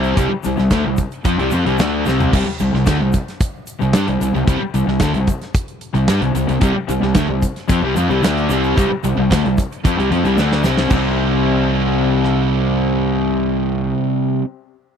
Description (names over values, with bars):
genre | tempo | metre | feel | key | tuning
classic rock | 112 BPM | 4/4 | straight | C minor | A4 = 442 Hz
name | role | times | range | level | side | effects
crunchy overdriven guitar | riff | 0.0-2.3, 6.6-14.4 s | C3 to D4 | -22 LUFS | equal | none
raw garage guitar | riff | 0.0-14.4 s | C3 to D4 | -21 LUFS | left 11 dB | overdrive, spring reverb
sludgy distorted guitar | riff | 0.0-14.5 s | C3 to Eb4 | -21 LUFS | right 11 dB | overdrive
fuzz fingered electric bass | bass | 0.0-13.9 s | C2 to G2 | -20 LUFS | equal | overdrive
big rock drum kit | drums | 0.0-12.4 s | crash cymbal, hi-hat, kick drum, rim click, snare drum, toms | -20 LUFS | equal | none
egg shaker | percussion | 0.0-11.2 s | none | -39 LUFS | left 7 dB | none
room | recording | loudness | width
little or no reverb | dry, close 1970s-style studio recording | -15 LUFS | side -7 dB against mid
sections
0.0-2.3 A section; 2.3-10.9 A section; 10.9-15.0 B section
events
drum fill 2.1, 10.4-10.9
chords
0.0 C5; 10.9 Cm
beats
| 0.17 0.71 1.25 1.79 | 2.33 2.86 3.40 3.94 | 4.47 5.01 5.55 6.08 | 6.62 7.16 7.69 8.23 | 8.77 9.30 9.84 10.37 | 10.90 11.44 11.97 12.51 | 13.04 13.58 14.11